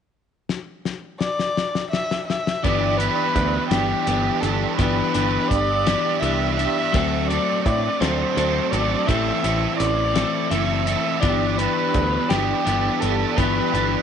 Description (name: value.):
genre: indie rock.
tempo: 56 BPM (dotted quarters).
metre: 6/8.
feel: straight.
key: unclear.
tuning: A4 = 442 Hz.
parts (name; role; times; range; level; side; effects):
cloth-damped thuddy drum kit; drums; 0.5-13.9 s; hi-hat, kick drum, snare drum; -26 LUFS; left 3 dB; none.
dark erhu; melody; 1.2-14.0 s; G4 to E5; -24 LUFS; left 2 dB; tape echo.
clean electric guitar; riff; 2.6-14.0 s; E3 to D4; -26 LUFS; left 10 dB; none.
overdriven electric guitar; riff; 2.6-14.0 s; E3 to A4; -24 LUFS; right 15 dB; ensemble chorus.
picked electric bass; bass; 2.6-13.9 s; F#1 to A2; -25 LUFS; right 1 dB; none.
room: light reverb, studio reverb.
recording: 1960s-style stereo with parts hard left and right, nothing above 10.3 kHz.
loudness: -19 LUFS.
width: side -8 dB against mid.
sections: 0.5-2.6 A section; 2.6-14.0 B section.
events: drum fill 0.5-2.6.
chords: 0.5 N.C.; 2.6 G6; 6.9 D7; 9.1 Am; 11.2 G6.